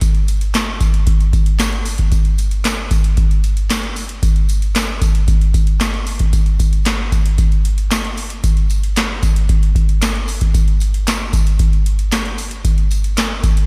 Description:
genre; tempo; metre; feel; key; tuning
funk; 114 BPM; 4/4; straight; none; none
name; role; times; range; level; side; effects
booming analog drum machine; drums; 0.0-13.7 s; handclaps, hi-hat, kick drum, snare drum; -16 LUFS; equal; none
tambourine; percussion; 0.0-13.6 s; none; -34 LUFS; equal; none
room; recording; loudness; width
digital ambience; none; -16 LUFS; mono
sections
0.0-13.7 A section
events
none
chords
none

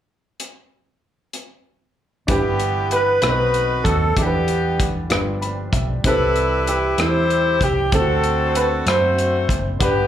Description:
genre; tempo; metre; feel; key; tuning
slow gospel; 64 BPM (dotted quarters); 6/8; straight; G major; A4 = 441 Hz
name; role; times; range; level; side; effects
modern studio drum kit; drums; 0.4-9.9 s; hi-hat, kick drum, rim click; -23 LUFS; equal; none
bright saxophone section; melody; 2.3-10.1 s; A3 to C5; -21 LUFS; left 3 dB; plate reverb, slapback echo
clear concert grand piano; melody; 2.3-10.1 s; E4 to C5; -21 LUFS; right 3 dB; plate reverb, slapback echo, tape echo
warm upright piano; accompaniment; 2.3-10.1 s; G2 to B5; -27 LUFS; equal; plate reverb, slapback echo
clear brass ensemble; sustained chords; 2.3-10.1 s; C3 to D5; -33 LUFS; equal; plate reverb
hollow-body short-scale fingered electric bass; bass; 2.3-10.1 s; F#1 to F#2; -23 LUFS; equal; none
room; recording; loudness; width
light reverb; live gig heard through the venue's PA, club reverb; -16 LUFS; side -10 dB against mid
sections
0.4-2.3 A section; 2.3-10.1 B section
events
upright piano fill 5.1-6.0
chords
0.4 N.C.; 2.3 G6; 3.2 B7b9; 4.2 Em7; 5.1 G7; 6.0 Cmaj7; 7.9 D7

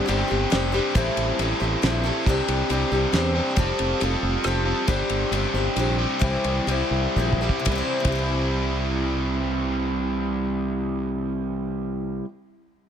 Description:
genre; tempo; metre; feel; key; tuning
folk rock and heartland rock; 117-138 BPM; 3/4; straight; C major; A4 = 444 Hz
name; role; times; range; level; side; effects
picked steel-string acoustic guitar; accompaniment; 0.0-12.3 s; A2 to C5; -28 LUFS; left 4 dB; none
biting overdriven guitar; riff; 0.0-12.3 s; G2 to A4; -25 LUFS; right 1 dB; none
fingered electric bass; bass; 0.1-12.2 s; F1 to E2; -27 LUFS; right 1 dB; none
damped 70s drum kit; drums; 0.1-8.2 s; kick drum, ride cymbal, rim click, snare drum; -28 LUFS; equal; none
room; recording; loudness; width
light reverb, small room ambience; none; -21 LUFS; side -8 dB against mid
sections
0.0-7.7 A section; 7.7-10.7 B section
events
slowing down 4.9-7.7; drum fill 7.2-7.7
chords
0.0 Csus2/G; 0.9 Am7; 2.3 Csus2; 3.6 Fadd9; 4.9 Csus2/G; 6.2 C

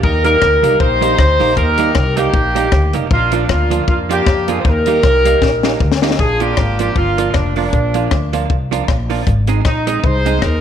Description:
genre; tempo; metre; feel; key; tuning
ska; 156 BPM; 4/4; swing 56% on 8ths; Bb mixolydian; A4 = 440 Hz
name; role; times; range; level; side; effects
mellow horn section; melody; 0.0-10.6 s; F3 to C5; -16 LUFS; equal; slapback echo
upright bass; bass; 0.0-10.6 s; F1 to F2; -18 LUFS; equal; none
compact cocktail drum kit; drums; 0.0-10.5 s; hi-hat, kick drum, rim click, snare drum; -18 LUFS; left 3 dB; none
hollow-body jazz guitar; accompaniment; 0.2-10.4 s; F3 to Ab4; -20 LUFS; right 9 dB; slapback echo
room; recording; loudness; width
moderate echo chamber reverb, RT60 1.4 s, small room reverb; 1960s-style stereo; -12 LUFS; side -9 dB against mid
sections
0.0-6.2 A section; 6.2-10.6 B section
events
drum fill 5.4-6.2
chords
0.0 Eb; 3.1 Bb; 4.6 Eb; 6.2 Bb; 9.3 Ab

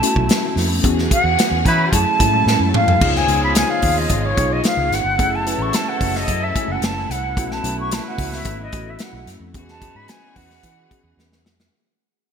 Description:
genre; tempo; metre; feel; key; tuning
polished 1980s jazz-funk pop; 110 BPM; 4/4; straight; unclear; A4 = 439 Hz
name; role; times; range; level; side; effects
concert flute; melody; 0.0-11.2 s; C#5 to C#6; -21 LUFS; equal; none
tine electric piano; accompaniment; 0.0-11.7 s; G#3 to G#5; -25 LUFS; left 2 dB; slow stereo tremolo, analog chorus
rich studio string section; sustained chords; 0.0-11.7 s; C#3 to A5; -31 LUFS; right 1 dB; none
modern studio drum kit; drums; 0.0-11.7 s; crash cymbal, hi-hat, kick drum, snare drum, toms; -20 LUFS; equal; gated reverb
vintage muted fingered electric bass; bass; 0.2-11.7 s; F#1 to E3; -23 LUFS; equal; none
clear horn section; second line; 1.7-11.4 s; E#3 to B4; -28 LUFS; right 2 dB; none
room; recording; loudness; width
light reverb; bright 1980s-style digital production; -16 LUFS; side -7 dB against mid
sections
0.0-3.0 A section; 3.0-11.7 B section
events
band accent 0.8-3.0; drum fill 2.5-3.0, 11.2-11.7; fade-out 3.0-11.7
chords
0.0 B7sus4; 0.8 E69; 1.9 F#m7; 3.0 C#7; 5.2 F#m7; 7.4 B7sus4; 9.5 E69

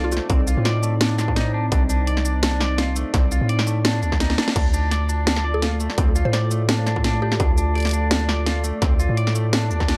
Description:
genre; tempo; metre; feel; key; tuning
half-time drum and bass; 169 BPM; 4/4; swing 54% on 16ths, half-time; D phrygian; A4 = 440 Hz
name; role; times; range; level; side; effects
mallet-like synth pluck; melody; 0.0-0.9, 5.5-7.4 s; F4 to C5; -33 LUFS; equal; chorus, phaser, delay
dark analog pad; sustained chords; 0.0-10.0 s; A3 to D5; -31 LUFS; equal; chorus, sidechain pumping
clean electric guitar; arpeggios; 0.0-10.0 s; A3 to D5; -30 LUFS; equal; spring reverb, delay
long sustained 808-style bass; bass; 0.0-10.0 s; C2 to A2; -24 LUFS; equal; tube saturation
drum and bass drum kit; drums; 0.1-10.0 s; crash cymbal, hi-hat, shaker, snare drum; -26 LUFS; equal; studio reverb
electronic kick drum; drums; 0.3-9.9 s; none; -23 LUFS; equal; distortion, studio reverb
room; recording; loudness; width
light reverb; dark, warm production; -20 LUFS; mono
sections
0.0-10.0 A section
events
drum fill 4.3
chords
0.0 Cmadd9; 4.6 Dm

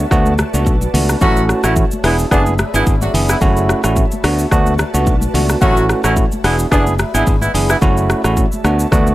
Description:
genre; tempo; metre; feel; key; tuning
afrobeats; 109 BPM; 4/4; swing 55% on 16ths; unclear; A4 = 439 Hz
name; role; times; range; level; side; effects
barky tine electric piano; accompaniment; 0.0-9.1 s; A3 to G#4; -17 LUFS; right 2 dB; none
ethereal airy pad; sustained chords; 0.0-9.1 s; F#4 to B5; -26 LUFS; equal; ensemble chorus, built-in reverb
modern bright fingered electric bass; bass; 0.0-9.1 s; E1 to D2; -17 LUFS; equal; none
afro-pop drum kit; drums; 0.1-9.1 s; hi-hat, kick drum, rim click, shaker; -17 LUFS; equal; none
congas; percussion; 0.3-9.1 s; none; -25 LUFS; equal; none
mellow horn section; second line; 1.2-7.8 s; D3 to F#4; -18 LUFS; equal; none
room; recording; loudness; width
digital ambience; dry, gritty hardware recording, transformer saturation; -12 LUFS; side -16 dB against mid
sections
0.0-9.1 A section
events
none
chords
0.0 D6; 1.2 A6; 2.0 E7; 3.4 F#m7; 4.2 D6; 5.6 A6; 6.4 E7; 7.8 F#m7; 8.6 D6

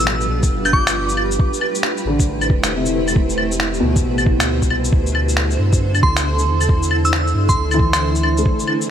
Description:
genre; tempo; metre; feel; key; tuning
future garage; 136 BPM; 4/4; swing 63% on 16ths; unclear; A4 = 436 Hz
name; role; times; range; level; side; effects
glassy synth bell; melody; 0.0-1.4, 6.0-8.2 s; C6 to G6; -22 LUFS; right 1 dB; chorus, ping-pong delay
felt-muted upright piano; accompaniment; 0.0-8.9 s; B2 to A3; -24 LUFS; left 1 dB; sidechain pumping, ping-pong delay
granular cloud pad; sustained chords; 0.0-8.9 s; C3 to C5; -22 LUFS; right 1 dB; built-in reverb, analog chorus, sidechain pumping
warm sub bass; bass; 0.0-8.4 s; E1 to G2; -20 LUFS; equal; tube saturation, sidechain pumping
electronic finger snaps, shaker and claves; drums; 0.1-8.9 s; none; -21 LUFS; left 1 dB; none
electronic kick drum; drums; 0.4-8.6 s; none; -17 LUFS; equal; none
room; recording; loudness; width
moderate lush hall reverb, RT60 1.8 s; bright 1980s-style digital production, vinyl crackle; -15 LUFS; side -9 dB against mid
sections
0.0-8.9 A section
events
none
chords
0.0 G9; 1.4 Am7; 4.9 D5

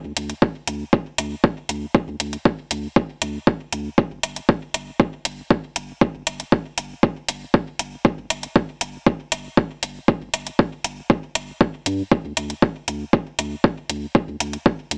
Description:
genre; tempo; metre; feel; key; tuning
dub techno; 118 BPM; 4/4; straight; unclear; A4 = 438 Hz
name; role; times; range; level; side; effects
pure sine sub bass; bass; 0.0-15.0 s; G1 to G2; -34 LUFS; equal; transformer saturation, sidechain pumping
electronic hi-hat; drums; 0.2-15.0 s; none; -27 LUFS; equal; studio ambience
electronic kick drum; drums; 0.4-14.8 s; none; -20 LUFS; equal; studio ambience
room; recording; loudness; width
little or no reverb; dry, gritty hardware recording, small speaker sound; -23 LUFS; mono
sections
0.0-15.0 A section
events
none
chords
none

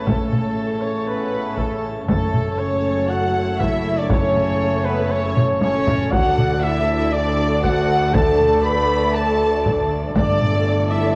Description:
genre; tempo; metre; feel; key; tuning
cinematic, epic orchestral film score; 119 BPM; 4/4; straight; unclear; A4 = 441 Hz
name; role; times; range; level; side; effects
rich symphonic violin section; melody; 0.0-11.2 s; A4 to B5; -31 LUFS; equal; none
warm symphonic violin section; second line; 0.0-11.2 s; A4 to B5; -31 LUFS; equal; none
warm symphonic viola section; accompaniment; 0.0-11.2 s; A4 to D5; -31 LUFS; equal; none
bright trombone section; sustained chords; 0.0-11.2 s; C#3 to A3; -31 LUFS; equal; none
pipe organ, principal chorus; sustained chords; 0.0-11.2 s; A3 to A5; -32 LUFS; equal; none
warm French horn section; sustained chords; 0.0-11.2 s; A3 to B4; -26 LUFS; equal; none
clear trumpet; stabs; 0.0-11.2 s; A4 to B5; -28 LUFS; equal; none
clear symphonic double bass section; bass; 0.0-11.2 s; F#1 to D2; -29 LUFS; equal; none
warm symphonic cello section; bass; 0.0-11.2 s; D2 to A2; -30 LUFS; equal; none
taiko ensemble; drums; 0.1-10.6 s; none; -25 LUFS; equal; none
room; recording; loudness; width
wet scoring stage reverb, RT60 1.9 s; worn, warbling old tape, cassette tape, warbly pitch drift; -19 LUFS; mono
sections
0.0-11.2 A section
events
drum fill 5.4-6.1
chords
0.0 A; 2.1 F#m; 6.1 D; 10.2 Gsus2

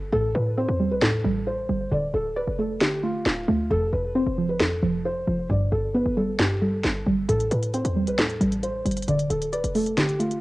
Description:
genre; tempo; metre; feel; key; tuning
hip hop, trap; 134 BPM; 4/4; half-time; A minor; A4 = 439 Hz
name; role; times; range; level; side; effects
felt-muted upright piano; melody; 0.0-10.4 s; F4 to D5; -27 LUFS; equal; cassette tape, analog delay
short 808-style bass; bass; 0.0-10.4 s; D1 to A2; -29 LUFS; equal; none
soft round pluck; accompaniment; 0.1-10.4 s; F2 to D5; -25 LUFS; right 1 dB; chorus
trap drum kit; drums; 1.0-10.4 s; hi-hat, snare drum; -25 LUFS; equal; vintage 12-bit sampler grit
room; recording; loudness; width
light reverb; home recording on cassette, lossy compression artefacts; -22 LUFS; side -19 dB against mid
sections
0.0-10.4 A section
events
hi-hats muted 0.1-7.3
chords
0.1 Am7; 1.9 Dm; 3.7 F; 5.5 Gadd9; 7.3 Am7; 9.1 Dm

